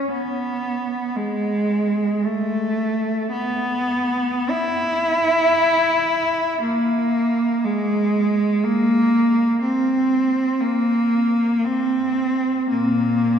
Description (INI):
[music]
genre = classical, free, expressive piece for unaccompanied cello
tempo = 47-61 BPM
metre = 3/4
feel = rubato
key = C# minor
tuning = A4 = 440 Hz
[part]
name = rich cello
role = solo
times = 0.0-13.4 s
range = Bb2 to E4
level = -18 LUFS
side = equal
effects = none
[sound]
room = wet church reverb, RT60 3.5 s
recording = minimal, uncompressed stereo recording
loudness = -18 LUFS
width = side -8 dB against mid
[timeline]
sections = 0.0-13.4 A section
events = none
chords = none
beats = | 0.11 1.15 2.24 | 3.31 4.51 5.58 | 6.61 7.62 8.63 | 9.63 10.61 11.65 | 12.70